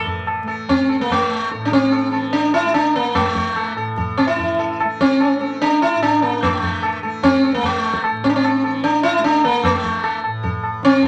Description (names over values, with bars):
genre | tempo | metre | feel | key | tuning
indian classical, Hindustani | 148 BPM | 4/4 | straight | A raga bhairavi | A4 = 441 Hz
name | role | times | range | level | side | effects
sitar | melody | 0.0-11.1 s | A3 to A4 | -19 LUFS | equal | none
tanpura | drone | 0.0-11.1 s | A2 to A3 | -32 LUFS | equal | none
tabla | percussion | 0.1-11.1 s | none | -26 LUFS | equal | none
room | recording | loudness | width
wet club reverb, RT60 0.5 s | vinyl crackle | -18 LUFS | mono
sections
0.0-11.1 A section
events
speeding up 0.0-11.1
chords
none